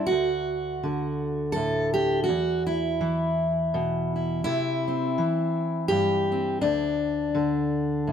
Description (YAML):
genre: folk, solo fingerstyle acoustic guitar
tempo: 83 BPM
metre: 3/4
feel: swing 57% on 8ths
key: unclear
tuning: A4 = 440 Hz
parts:
  - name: fingerpicked steel-string acoustic guitar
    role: solo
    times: 0.0-8.1 s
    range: D2 to A4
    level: -23 LUFS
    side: equal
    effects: none
room: moderate studio reverb, RT60 0.6 s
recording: band playing live in one room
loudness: -23 LUFS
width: side -8 dB against mid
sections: 0.0-8.1 A section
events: none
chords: 0.1 D; 2.3 E5; 4.4 C; 6.6 N.C.